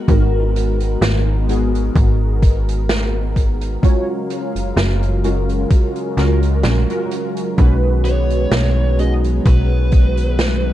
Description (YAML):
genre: vaporwave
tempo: 64 BPM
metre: 4/4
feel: swing 54% on 16ths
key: F# major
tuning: A4 = 440 Hz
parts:
  - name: lush unison pad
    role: sustained chords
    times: 0.0-10.7 s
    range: C#3 to E#5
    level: -26 LUFS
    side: equal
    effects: chorus, phaser
  - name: warbly lo-fi synth keys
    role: accompaniment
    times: 0.1-10.7 s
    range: G#3 to C#5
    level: -22 LUFS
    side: equal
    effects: ensemble chorus, vintage 12-bit sampler grit, tape echo
  - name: slap-like FM bass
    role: bass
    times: 0.1-10.7 s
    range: F#1 to C#2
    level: -17 LUFS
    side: equal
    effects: none
  - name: electronic kick drum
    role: drums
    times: 0.1-10.1 s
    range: none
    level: -13 LUFS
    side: equal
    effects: overdrive
  - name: street-band drum kit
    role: drums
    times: 0.1-10.6 s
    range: hi-hat, snare drum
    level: -24 LUFS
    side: right 2 dB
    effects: none
  - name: biting lead guitar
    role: melody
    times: 8.0-10.7 s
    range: B4 to D#5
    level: -27 LUFS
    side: right 1 dB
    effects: overdrive, tape echo
room: small room ambience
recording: dark, warm production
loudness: -14 LUFS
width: side -13 dB against mid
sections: 0.0-10.7 A section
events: none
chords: 0.0 G#m9; 3.8 F#maj9; 7.6 B6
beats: | 0.08 1.02 1.96 2.89 | 3.83 4.77 5.71 6.64 | 7.58 8.52 9.46 10.39